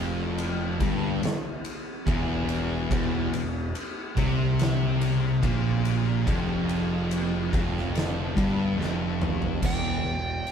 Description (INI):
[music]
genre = stoner and doom metal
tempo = 71 BPM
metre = 4/4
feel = straight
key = unclear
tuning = A4 = 438 Hz
[part]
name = distorted electric guitar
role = riff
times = 0.0-9.6 s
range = E2 to C3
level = -34 LUFS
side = left 2 dB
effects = overdrive
[part]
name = thick fuzz guitar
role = riff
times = 0.0-10.4 s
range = E2 to C3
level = -30 LUFS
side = left 7 dB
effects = distortion
[part]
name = thick fuzz guitar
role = riff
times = 0.0-10.4 s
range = E2 to C3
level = -30 LUFS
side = right 8 dB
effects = distortion
[part]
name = fuzz picked electric bass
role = bass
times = 0.0-10.4 s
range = E1 to C2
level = -32 LUFS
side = equal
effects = overdrive
[part]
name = oversized low-tuned drum kit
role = drums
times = 0.4-10.5 s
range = crash cymbal, kick drum, ride cymbal, snare drum, toms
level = -30 LUFS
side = equal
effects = none
[part]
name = fuzz lead guitar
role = melody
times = 9.7-10.5 s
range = G5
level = -30 LUFS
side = right 3 dB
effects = distortion
[sound]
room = moderate studio reverb, RT60 0.7 s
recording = band playing live in one room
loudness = -24 LUFS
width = side -7 dB against mid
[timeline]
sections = 0.0-9.6 A section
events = drum fill 8.8-9.6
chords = 0.0 Em